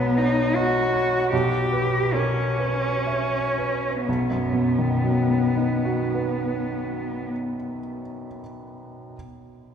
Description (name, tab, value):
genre	classical, impressionist duo for cello and grand piano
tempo	56-83 BPM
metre	3/4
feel	rubato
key	B major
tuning	A4 = 440 Hz
part	rich cello	melody	0.0-7.3 s	B3 to G4	-24 LUFS	left 1 dB	none
part	clear baby grand piano	accompaniment	0.0-9.2 s	B1 to E5	-25 LUFS	right 1 dB	none
room	wet cathedral reverb, RT60 4.0 s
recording	recorded in a church or concert hall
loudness	-21 LUFS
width	side -8 dB against mid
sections	0.0-4.1 A section; 4.1-6.9 B section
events	slowing down 0.0-4.1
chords	0.0 Badd9; 1.3 Em6/B; 4.1 B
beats	0.55 | 1.32 2.13 3.05 | 4.07 5.01 5.99